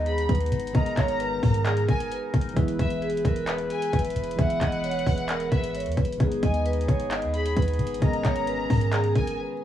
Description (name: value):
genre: hip hop, trap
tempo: 132 BPM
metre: 4/4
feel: half-time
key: G# minor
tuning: A4 = 439 Hz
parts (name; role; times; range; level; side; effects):
- vibraphone with medium mallets; melody; 0.0-9.6 s; E4 to E5; -29 LUFS; equal; digital delay
- tine electric piano; accompaniment; 0.0-9.6 s; D#3 to B4; -31 LUFS; right 2 dB; none
- clear woodwind section; sustained chords; 0.0-9.6 s; E3 to B4; -37 LUFS; left 3 dB; none
- clean 808-style bass; bass; 0.0-9.4 s; D#1 to G#2; -29 LUFS; equal; none
- warm studio violin section; second line; 0.1-9.4 s; E5 to B5; -34 LUFS; left 2 dB; digital delay
- trap drum kit; drums; 0.1-9.4 s; handclaps, hi-hat, kick drum; -26 LUFS; equal; none
room: little or no reverb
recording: worn, warbling old tape, cassette tape, vinyl crackle, warbly pitch drift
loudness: -22 LUFS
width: side -11 dB against mid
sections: 0.0-9.6 A section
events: break 9.4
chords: 0.0 G#m; 2.6 E; 6.2 G#m